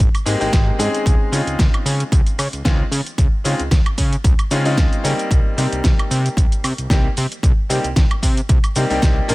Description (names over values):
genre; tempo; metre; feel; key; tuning
nu-disco, nu disco; 113 BPM; 4/4; swing 54% on 16ths; unclear; A4 = 440 Hz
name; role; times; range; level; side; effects
fat analog bass; bass; 0.0-9.3 s; Ab1 to Db3; -20 LUFS; equal; sidechain pumping
electronic kick drum; drums; 0.0-9.1 s; none; -16 LUFS; equal; none
pop drum kit; drums; 0.0-9.3 s; cabasa, hi-hat, snare drum, woodblock; -24 LUFS; right 1 dB; none
bright grand piano; accompaniment; 0.3-9.3 s; F3 to Bb4; -22 LUFS; left 1 dB; sidechain pumping, dub echo
room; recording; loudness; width
digital ambience; none; -15 LUFS; side -20 dB against mid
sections
0.0-9.3 A section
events
none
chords
0.0 Abmaj7; 1.1 Dbmaj7; 5.3 Cm7